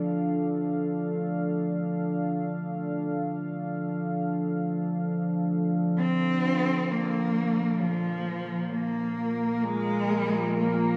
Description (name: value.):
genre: ambient.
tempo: free time.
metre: none.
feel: none.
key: D minor.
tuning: A4 = 439 Hz.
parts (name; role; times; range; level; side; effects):
deep dark ambient pad; sustained chords; 0.0-11.0 s; Bb3 to F5; -33 LUFS; equal; chorus, built-in reverb.
deep rumbling drone; drone; 0.0-11.0 s; F3; -32 LUFS; equal; built-in reverb, lush chorus.
warm cello; melody; 6.0-11.0 s; F3 to C4; -29 LUFS; equal; tape echo.
room: wet echo chamber reverb, RT60 2.6 s.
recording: echo-heavy mix.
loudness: -28 LUFS.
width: mono.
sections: 0.0-11.0 A section.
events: filter sweep on synth drone 0.0-11.0.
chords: 0.0 Dm; 6.9 Bb5.